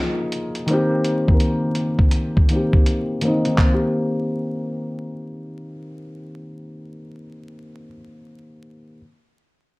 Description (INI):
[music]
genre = lo-fi hip hop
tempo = 83 BPM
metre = 4/4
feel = swing 65% on 16ths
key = Eb major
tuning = A4 = 442 Hz
[part]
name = felt-muted upright piano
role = accompaniment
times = 0.0-9.0 s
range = Eb3 to Bb4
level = -22 LUFS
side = left 1 dB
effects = cassette tape, low-pass filter
[part]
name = dusty soul sampler-style drum kit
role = drums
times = 0.3-3.8 s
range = handclaps, hi-hat, kick drum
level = -18 LUFS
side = equal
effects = vintage 12-bit sampler grit
[sound]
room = light reverb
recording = vinyl crackle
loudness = -17 LUFS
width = side -23 dB against mid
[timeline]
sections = 0.0-3.6 A section; 3.6-6.5 B section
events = filter sweep on felt piano 0.0-3.6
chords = 0.0 Bb7sus4; 0.7 Eb6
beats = | 0.69 1.41 2.13 2.85 | 3.58 4.30 5.02 5.75